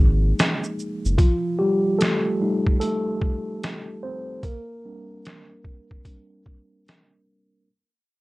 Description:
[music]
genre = lo-fi hip hop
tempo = 74 BPM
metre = 4/4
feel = swing 65% on 16ths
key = Bb major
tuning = A4 = 438 Hz
[part]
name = mellow tine electric piano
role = accompaniment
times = 0.0-7.7 s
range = F3 to C5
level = -24 LUFS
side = equal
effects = slow stereo tremolo, low-pass filter
[part]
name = saturated sub bass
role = bass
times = 0.0-1.2 s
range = Gb1 to Ab1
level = -19 LUFS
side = equal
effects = none
[part]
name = trip hop sampler-style drum kit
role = drums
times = 0.4-7.1 s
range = hi-hat, kick drum, shaker, snare drum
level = -20 LUFS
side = equal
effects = none
[sound]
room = moderate studio reverb, RT60 0.5 s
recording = cassette tape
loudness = -20 LUFS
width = side -21 dB against mid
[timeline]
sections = 0.0-7.7 A section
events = fade-out 0.0-7.7; tine electric piano solo 0.0-7.7; filter sweep on tine electric piano 0.0-7.7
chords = 0.0 Fmadd11; 1.2 F9; 4.4 Bb6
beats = 0.38 | 1.19 2.00 2.81 3.62 | 4.43 5.24 6.05 6.86

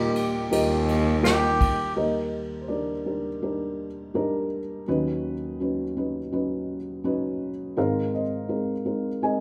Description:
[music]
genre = acoustic folk-pop ballad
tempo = 83 BPM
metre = 4/4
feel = straight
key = Eb major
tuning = A4 = 440 Hz
[part]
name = felt-muted upright piano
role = melody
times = 0.0-9.4 s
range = Ab1 to Ab5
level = -28 LUFS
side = equal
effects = none
[part]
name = pedal steel guitar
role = second line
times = 0.0-1.9 s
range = G4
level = -30 LUFS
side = equal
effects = none
[part]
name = warm cello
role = bass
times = 0.0-1.7 s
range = Eb2 to Bb2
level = -28 LUFS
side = equal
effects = none
[part]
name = soft brush drum kit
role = drums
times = 0.2-1.8 s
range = kick drum, ride cymbal, snare drum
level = -31 LUFS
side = equal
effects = none
[sound]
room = moderate recital hall reverb, RT60 1.3 s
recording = recorded in a church or concert hall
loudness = -26 LUFS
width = mono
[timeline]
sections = 0.0-2.0 A section; 2.0-9.4 B section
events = none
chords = 0.0 Ebadd9; 2.0 Ebmaj7; 4.9 Badd9/D#; 7.8 Abadd9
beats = 0.51 1.24 | 1.97 2.69 3.42 4.14 | 4.87 5.59 6.32 7.04 | 7.77 8.49 9.21

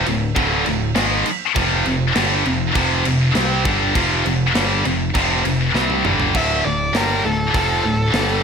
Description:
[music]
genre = heavy metal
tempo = 100 BPM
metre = 4/4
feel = straight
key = D minor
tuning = A4 = 435 Hz
[part]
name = heavy high-gain guitar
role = riff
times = 0.0-8.4 s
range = D2 to C4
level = -20 LUFS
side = left 10 dB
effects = distortion
[part]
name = heavy high-gain guitar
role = riff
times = 0.0-8.4 s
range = D2 to C4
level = -21 LUFS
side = right 12 dB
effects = distortion
[part]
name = growling picked electric bass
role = bass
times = 0.0-8.4 s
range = D1 to C2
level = -24 LUFS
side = equal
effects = overdrive
[part]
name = tight metal drum kit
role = drums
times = 0.1-8.3 s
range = crash cymbal, hi-hat, kick drum, snare drum, toms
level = -24 LUFS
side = equal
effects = none
[part]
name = high-gain lead guitar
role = melody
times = 6.4-8.4 s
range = A4 to E5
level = -21 LUFS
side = equal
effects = distortion
[sound]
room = small room ambience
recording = none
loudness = -16 LUFS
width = side -6 dB against mid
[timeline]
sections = 0.0-6.3 A section; 6.3-8.4 B section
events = drum fill 5.7-6.3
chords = 0.0 D5; 1.6 F5; 6.3 Dm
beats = 0.36 0.96 | 1.56 2.16 2.76 3.36 | 3.95 4.55 5.15 5.75 | 6.34 6.94 7.54 8.14

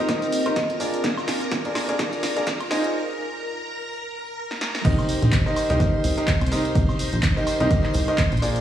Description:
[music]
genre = piano house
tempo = 126 BPM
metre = 4/4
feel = swing 57% on 16ths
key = C minor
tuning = A4 = 440 Hz
[part]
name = string machine, violins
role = sustained chords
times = 0.0-8.6 s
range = Bb4 to C6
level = -32 LUFS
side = equal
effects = ensemble chorus, sidechain pumping
[part]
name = bright upright piano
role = riff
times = 0.0-8.6 s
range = D4 to Eb5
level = -25 LUFS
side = equal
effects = sidechain pumping, low-pass filter, digital delay
[part]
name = airy breathy pad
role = texture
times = 0.0-2.9 s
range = C4 to Eb5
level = -32 LUFS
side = equal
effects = chorus, sidechain pumping
[part]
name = electronic kick drum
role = drums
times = 0.1-8.3 s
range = none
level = -23 LUFS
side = equal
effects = high-pass filter on kick, high-pass filter on room
[part]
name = punchy analog drum machine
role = drums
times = 0.1-8.6 s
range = crash cymbal, handclaps, hi-hat, shaker, snare drum, woodblock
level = -28 LUFS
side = equal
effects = none
[part]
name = plucky analog bass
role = bass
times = 4.8-8.6 s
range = Bb1 to C2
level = -23 LUFS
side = equal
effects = sidechain pumping
[part]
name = tambourine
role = percussion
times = 4.8-8.6 s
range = none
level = -42 LUFS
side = right 2 dB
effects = none
[sound]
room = moderate lush hall reverb, RT60 1.9 s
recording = played on a big sound system in a bare room, large studio reverb, high-pass filter, small room ambience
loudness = -20 LUFS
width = side -11 dB against mid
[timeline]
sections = 0.0-4.8 A section; 4.8-8.6 B section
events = build-up 0.0-4.8; drum fill 0.0-2.9, 4.5-4.8; filter sweep on upright piano 0.0-4.8; filter sweep 0.0-4.8; break 2.9-4.8; drop 4.8-8.6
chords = 0.0 Cm7; 0.8 Bb7; 2.9 N.C.; 4.8 Cm7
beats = 0.09 0.56 | 1.04 1.52 1.99 2.47 | 2.94 3.42 3.90 4.37 | 4.85 5.33 5.80 6.28 | 6.75 7.23 7.71 8.18

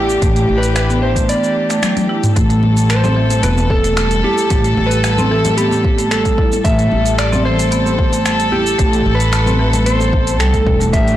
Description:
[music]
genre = organic downtempo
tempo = 112 BPM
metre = 4/4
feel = straight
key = A minor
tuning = A4 = 440 Hz
[part]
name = electric slide guitar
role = melody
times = 0.0-11.2 s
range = G4 to E5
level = -19 LUFS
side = equal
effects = digital delay
[part]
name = warm studio string section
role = sustained chords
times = 0.0-11.2 s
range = E3 to A4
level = -20 LUFS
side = left 1 dB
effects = sidechain pumping
[part]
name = marimba with medium hard mallets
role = arpeggios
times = 0.0-11.2 s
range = E3 to E4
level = -20 LUFS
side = right 1 dB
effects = digital delay
[part]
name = upright bass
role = bass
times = 0.0-11.2 s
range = E1 to C2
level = -17 LUFS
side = equal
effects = transformer saturation, sidechain pumping
[part]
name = organic electronic drum kit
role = drums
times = 0.1-11.2 s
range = finger snaps, hi-hat, shaker, toms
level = -22 LUFS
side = equal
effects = soft clipping on snare
[part]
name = electronic kick drum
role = drums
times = 0.2-11.0 s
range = none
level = -16 LUFS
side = equal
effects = overdrive
[part]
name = congas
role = percussion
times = 2.6-10.9 s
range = none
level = -26 LUFS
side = left 1 dB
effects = none
[sound]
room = light reverb, small room ambience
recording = blown-out, overdriven recording, overdrive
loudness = -12 LUFS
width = side -13 dB against mid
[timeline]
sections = 0.0-11.2 A section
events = drum fill 1.8-2.4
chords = 0.0 Em7; 2.4 Am7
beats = | 0.22 0.76 1.29 1.83 | 2.36 2.90 3.43 3.97 | 4.50 5.04 5.58 6.11 | 6.65 7.18 7.72 8.26 | 8.79 9.33 9.86 10.40 | 10.93

